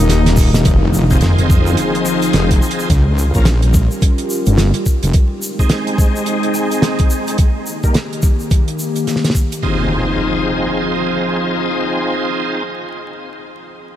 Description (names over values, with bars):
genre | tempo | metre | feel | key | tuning
glitch hop | 107 BPM | 4/4 | swing 60% on 16ths | F minor | A4 = 440 Hz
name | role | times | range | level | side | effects
warbly tape-like pad | sustained chords | 0.0-12.6 s | Eb3 to Bb4 | -22 LUFS | left 1 dB | chorus, built-in reverb, vintage 12-bit sampler grit, sidechain pumping
wobble bass | bass | 0.0-5.1 s | Eb1 to F2 | -13 LUFS | equal | chorus, tube saturation
deep dark ambient pad | texture | 0.0-12.6 s | Eb4 to D6 | -28 LUFS | left 1 dB | chorus, built-in reverb, sidechain pumping
damped 70s drum kit | drums | 0.1-9.6 s | hi-hat, rim click, snare drum | -21 LUFS | right 1 dB | none
egg shaker | percussion | 0.1-9.6 s | none | -30 LUFS | left 1 dB | none
electronic kick drum | drums | 0.4-9.5 s | none | -13 LUFS | equal | overdrive
impact | sound effects | 0.7-2.9, 9.6-13.4 s | none | -24 LUFS | equal | none
bright tonewheel organ | stabs | 1.1-12.6 s | G3 to Bb4 | -21 LUFS | equal | chorus vibrato, slow rotary speaker, vintage 12-bit sampler grit, sidechain pumping, low-pass filter, diffuse ambient delay
room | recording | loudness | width
light reverb, studio ambience | vinyl crackle | -13 LUFS | side -12 dB against mid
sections
0.7-9.6 A section; 9.6-11.9 B section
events
drum fill 0.1-0.7; fade-out on ambient pad 0.7-9.6; impact 0.7-2.9; filter sweep on tonewheel organ 0.7-9.6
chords
0.0 Eb; 0.7 Fm7; 2.9 Gm7b5; 5.1 Ab; 7.4 Eb; 9.6 Fm7